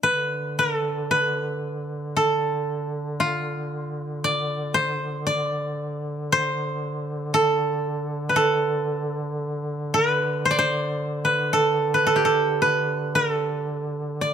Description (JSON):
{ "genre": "caucasian folk, Caucasian lament", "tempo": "57 BPM", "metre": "4/4", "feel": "rubato", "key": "D dorian", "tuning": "A4 = 440 Hz", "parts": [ { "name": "koto", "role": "melody", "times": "0.0-14.3 s", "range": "D4 to D5", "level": "-22 LUFS", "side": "right 1 dB", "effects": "none" }, { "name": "warm duduk", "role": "drone", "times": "0.1-14.3 s", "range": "D3", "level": "-29 LUFS", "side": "equal", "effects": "none" } ], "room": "light reverb", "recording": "close, detailed microphones", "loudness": "-21 LUFS", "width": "side -8 dB against mid", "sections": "0.0-14.3 A section", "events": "none", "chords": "none" }